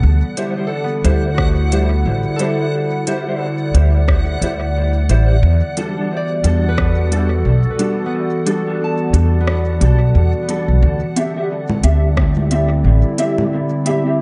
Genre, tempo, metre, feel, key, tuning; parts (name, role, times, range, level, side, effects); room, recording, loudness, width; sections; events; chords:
ambient dub; 89 BPM; 4/4; swing 59% on 16ths; A4 = 440 Hz
warbly tape-like pad; sustained chords; 0.0-14.2 s; D3 to D5; -24 LUFS; equal; chorus, built-in reverb
concert harp; arpeggios; 0.0-12.5 s; B3 to A5; -30 LUFS; equal; dub echo
upright bass; bass; 0.0-13.0 s; A1 to E2; -16 LUFS; equal
backwards swelling texture; texture; 0.0-10.8 s; F#5; -34 LUFS; equal; built-in reverb
mellow electric guitar; stabs; 0.4-14.2 s; G3 to E5; -25 LUFS; equal; ensemble chorus, dub echo
organic electronic drum kit; drums; 0.4-14.0 s; congas, hi-hat, rim click; -27 LUFS; equal; overdrive, dub echo
electronic kick drum; drums; 1.4-6.9, 12.2-12.3 s; -21 LUFS; equal; overdrive
light reverb, digital ambience; dark, warm production, nothing above 10.9 kHz; -16 LUFS; mono
0.0-10.8 A section; 10.8-14.2 B section
kick drops out 8.1-10.8
0.0 D9sus4; 5.4 Em11; 10.8 D9sus4